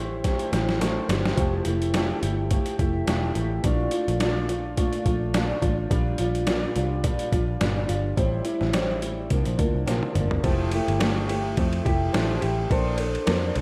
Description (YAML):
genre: indie pop, bedroom pop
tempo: 106 BPM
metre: 4/4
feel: swing 55% on 16ths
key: F major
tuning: A4 = 444 Hz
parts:
  - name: fingerpicked old ladder-braced acoustic guitar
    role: accompaniment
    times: 0.0-13.6 s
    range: A2 to C5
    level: -29 LUFS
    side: equal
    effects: subtle chorus, warbly pitch drift
  - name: vintage muted picked electric bass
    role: bass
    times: 0.0-13.6 s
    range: E1 to F2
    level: -29 LUFS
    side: equal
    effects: none
  - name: boom bap sampler-style drum kit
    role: drums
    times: 0.2-13.6 s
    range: hi-hat, kick drum, ride cymbal, snare drum, toms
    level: -29 LUFS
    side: equal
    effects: overdrive
room: moderate lush hall reverb, RT60 2.3 s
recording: big arena sound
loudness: -24 LUFS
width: mono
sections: 0.0-10.4 A section; 10.4-13.6 B section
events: drum fill 0.2-1.4, 9.9-10.4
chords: 0.0 Am7; 1.4 Fmaj9; 3.6 Bbmaj7; 5.9 Gm7/Bb; 8.2 Am7; 9.3 C9sus4; 10.4 Fmaj9; 12.7 Bbmaj9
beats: 0.24 0.81 | 1.38 1.94 2.51 3.08 | 3.64 4.21 4.78 5.34 | 5.91 6.47 7.04 7.61 | 8.17 8.74 9.31 9.87 | 10.44 11.01 11.57 12.14 | 12.71 13.27